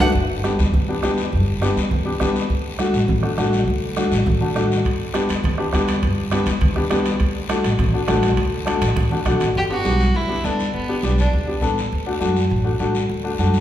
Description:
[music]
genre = latin, cumbia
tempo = 204 BPM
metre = 4/4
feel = straight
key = G major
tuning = A4 = 441 Hz
[part]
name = rich violin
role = melody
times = 0.0-0.1, 9.6-11.5 s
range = B3 to G4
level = -25 LUFS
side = right 1 dB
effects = none
[part]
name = clear upright piano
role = accompaniment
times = 0.0-13.5 s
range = A3 to A4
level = -22 LUFS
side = left 2 dB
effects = none
[part]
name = upright bass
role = bass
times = 0.0-13.6 s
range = G1 to F#2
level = -22 LUFS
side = equal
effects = none
[part]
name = bombo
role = percussion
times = 0.0-9.4 s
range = none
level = -25 LUFS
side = right 1 dB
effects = none
[part]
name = congas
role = percussion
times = 0.0-13.6 s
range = none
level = -25 LUFS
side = equal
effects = none
[part]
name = guiro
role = percussion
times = 0.0-13.6 s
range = none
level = -32 LUFS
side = left 4 dB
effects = none
[part]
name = timbales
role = percussion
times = 0.0-0.1, 4.9-9.6 s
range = none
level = -30 LUFS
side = right 4 dB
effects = none
[sound]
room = wet recital hall reverb, RT60 1.7 s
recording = recorded in a church or concert hall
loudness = -17 LUFS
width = side -12 dB against mid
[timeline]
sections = 0.1-9.6 A section; 9.6-13.6 B section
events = drum fill 8.7-9.6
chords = 0.1 G; 2.5 D; 4.8 G; 7.2 D; 9.6 G; 11.9 D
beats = | 0.15 0.44 0.73 1.03 | 1.32 1.61 1.91 2.20 | 2.50 2.79 3.09 3.38 | 3.67 3.97 4.26 4.56 | 4.85 5.14 5.44 5.73 | 6.03 6.32 6.62 6.91 | 7.20 7.50 7.79 8.09 | 8.38 8.67 8.97 9.26 | 9.56 9.85 10.15 10.44 | 10.74 11.03 11.33 11.62 | 11.91 12.21 12.51 12.80 | 13.10 13.39

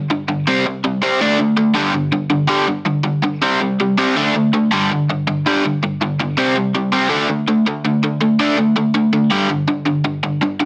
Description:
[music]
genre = punk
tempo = 163 BPM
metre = 4/4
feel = straight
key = unclear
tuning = A4 = 440 Hz
[part]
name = overdriven electric guitar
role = solo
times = 0.0-10.7 s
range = G2 to D4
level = -17 LUFS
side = equal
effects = none
[sound]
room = moderate studio reverb, RT60 0.6 s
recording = heavily compressed radio sound, multiband compression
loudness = -17 LUFS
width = mono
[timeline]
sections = 0.0-9.3 A section; 9.3-10.7 B section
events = half time 0.0-9.3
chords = 0.5 C5; 1.2 D5; 1.8 G5; 3.4 C5; 4.2 D5; 4.7 G5; 6.4 C5; 7.1 D5; 9.3 G5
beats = 0.09 | 0.46 0.83 1.20 1.57 | 1.94 2.31 2.68 3.05 | 3.42 3.79 4.16 4.53 | 4.90 5.27 5.64 6.00 | 6.37 6.74 7.11 7.48 | 7.85 8.21 8.58 8.95 | 9.32 9.69 10.06 10.43

